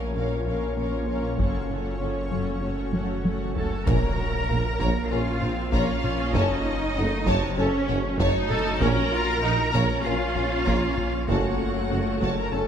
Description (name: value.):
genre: cinematic, hybrid orchestral and electronic film score.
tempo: 97 BPM.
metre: 4/4.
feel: straight.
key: Bb harmonic minor.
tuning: A4 = 441 Hz.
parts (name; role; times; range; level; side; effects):
warm symphonic violin section; second line; 0.0-12.6 s; A4 to Bb5; -33 LUFS; left 2 dB; none.
rich symphonic viola section; accompaniment; 0.0-12.7 s; C3 to Bb4; -31 LUFS; equal; none.
dark French horn section; sustained chords; 0.0-12.7 s; Db4 to Bb4; -34 LUFS; left 5 dB; none.
granular cloud pad; sustained chords; 0.0-12.7 s; A3 to Db5; -33 LUFS; equal; built-in reverb.
tight sequenced synth; arpeggios; 0.0-12.7 s; Gb3 to Bb4; -36 LUFS; left 2 dB; none.
detuned saw bass; bass; 0.0-12.7 s; Gb1 to Bb1; -31 LUFS; equal; none.
rich symphonic cello section; bass; 0.1-12.7 s; Gb2 to Bb4; -30 LUFS; right 2 dB; none.
clear symphonic double bass section; bass; 0.2-12.6 s; Gb1 to Bb1; -30 LUFS; right 3 dB; none.
taiko ensemble; drums; 1.4-12.7 s; none; -31 LUFS; equal; none.
rich symphonic violin section; melody; 3.6-12.7 s; Db5 to Bb5; -34 LUFS; left 3 dB; none.
warm tuba; bass; 3.9-12.7 s; Gb1 to Bb1; -32 LUFS; right 3 dB; none.
impact; sound effects; 3.9-6.3 s; none; -31 LUFS; equal; none.
room: moderate concert hall reverb, RT60 2.1 s.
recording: none.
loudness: -22 LUFS.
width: side -8 dB against mid.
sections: 0.0-3.9 A section; 3.9-12.7 B section.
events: drum fill 2.9-3.9; impact 3.9-6.3.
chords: 0.0 Bbm; 1.4 Gbm; 3.9 Bbm; 6.3 Gbm; 8.8 Bbm; 11.3 Gbm.